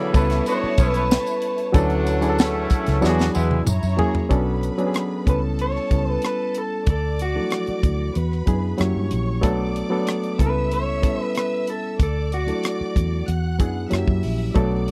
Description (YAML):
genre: lush 1970s-style soul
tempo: 94 BPM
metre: 4/4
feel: straight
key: B minor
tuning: A4 = 440 Hz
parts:
  - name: rich studio string section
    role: second line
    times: 0.0-14.9 s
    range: C#4 to F#6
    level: -36 LUFS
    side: equal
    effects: none
  - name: barky reed electric piano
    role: accompaniment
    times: 0.0-14.9 s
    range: D3 to C#5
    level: -27 LUFS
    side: equal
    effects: overdrive, spring reverb
  - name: mellow horn section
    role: stabs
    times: 0.0-3.6 s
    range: C#3 to F#4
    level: -29 LUFS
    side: equal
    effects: tube saturation
  - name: vintage muted fingered electric bass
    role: bass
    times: 0.1-14.9 s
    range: A#1 to F#3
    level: -26 LUFS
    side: equal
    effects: none
  - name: tight funk drum kit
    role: drums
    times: 0.1-14.9 s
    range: hi-hat, kick drum, rim click, snare drum, toms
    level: -22 LUFS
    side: equal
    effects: none
  - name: tambourine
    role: percussion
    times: 0.1-4.0 s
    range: none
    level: -42 LUFS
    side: equal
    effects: none
  - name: electric guitar through a small old amp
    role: melody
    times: 0.2-13.6 s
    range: F#4 to C#5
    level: -28 LUFS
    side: equal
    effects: none
room: little or no reverb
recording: dry, close 1970s-style studio recording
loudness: -22 LUFS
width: mono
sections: 0.0-4.3 A section; 4.3-14.9 B section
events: drum fill 3.0-4.3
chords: 0.1 A9; 1.7 Dmaj9; 3.0 E9; 3.7 F#9; 4.3 Bm9; 5.3 A9/C#; 6.9 Dadd9; 8.2 E9; 8.8 F#7b9; 9.4 Bm7; 10.4 A9/C#; 12.0 Dadd9; 13.3 E9; 13.9 F#7b9